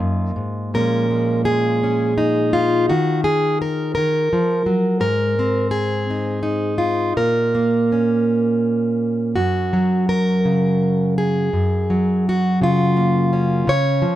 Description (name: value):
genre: folk, solo fingerstyle acoustic guitar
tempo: 56 BPM (dotted quarters)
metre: 6/8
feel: rubato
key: unclear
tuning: A4 = 438 Hz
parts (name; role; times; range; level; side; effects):
- fingerpicked plugged-in steel-string acoustic guitar; solo; 0.0-14.2 s; Gb2 to Db5; -16 LUFS; equal; none
room: light reverb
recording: none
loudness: -16 LUFS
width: side -13 dB against mid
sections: 0.0-9.4 A section; 9.4-14.2 B section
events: none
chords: 0.0 Ebmadd9/Gb; 0.7 Bbm7; 2.9 Ebmadd9; 5.0 Ab; 7.2 Bbm; 9.4 Gbmaj7